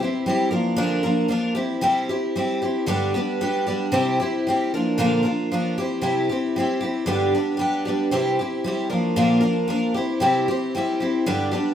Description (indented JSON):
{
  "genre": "rock",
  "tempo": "114 BPM",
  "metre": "4/4",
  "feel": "straight",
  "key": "C major",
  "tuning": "A4 = 440 Hz",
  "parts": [
    { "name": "picked twelve-string acoustic guitar", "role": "solo", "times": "0.0-11.7 s", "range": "G2 to Bb4", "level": "-20 LUFS", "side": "equal", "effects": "none" }
  ],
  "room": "moderate plate reverb, RT60 2.8 s",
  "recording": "rough home demo mix",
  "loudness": "-20 LUFS",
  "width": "side -9 dB against mid",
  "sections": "0.0-11.7 A section",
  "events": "none",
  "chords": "0.0 C; 0.5 Bb; 1.6 C; 2.9 G; 3.9 C; 4.7 Bb; 5.8 C; 7.1 G; 8.1 C; 8.9 Bb; 10.0 C"
}